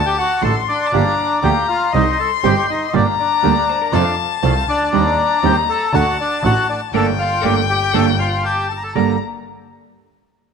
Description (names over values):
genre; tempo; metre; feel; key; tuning
tango; 120 BPM; 4/4; rubato; G minor; A4 = 440 Hz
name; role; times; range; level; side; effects
bandoneon; melody; 0.0-9.2 s; D4 to Bb5; -19 LUFS; left 1 dB; none
warm violin; second line; 0.0-9.2 s; G5 to C6; -20 LUFS; left 11 dB; none
bandoneon; stabs; 0.0-9.2 s; A3 to A4; -29 LUFS; right 10 dB; none
clear double bass; bass; 0.0-9.2 s; G1 to F2; -21 LUFS; right 1 dB; none
nylon-string guitar; accompaniment; 0.4-9.2 s; G2 to A4; -21 LUFS; right 12 dB; none
vintage hollow-body jazz guitar; second line; 3.7-9.2 s; A4 to F5; -28 LUFS; left 9 dB; none
room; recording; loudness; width
moderate echo chamber reverb, RT60 1.7 s, small room ambience; 1960s-style stereo with parts hard left and right; -14 LUFS; side -6 dB against mid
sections
0.0-8.9 A section; 8.9-10.5 B section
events
band accent 6.9-8.9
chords
0.0 Dsus4; 0.9 Gm7; 1.9 Cm; 2.9 Gm; 3.9 F; 4.9 Cmadd9/Eb; 5.9 D; 6.9 Gmadd9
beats
0.42 | 0.93 1.43 1.94 2.44 | 2.94 3.44 3.94 4.44 | 4.94 5.44 5.94 6.44 | 6.94 7.44 7.94 8.44 | 8.95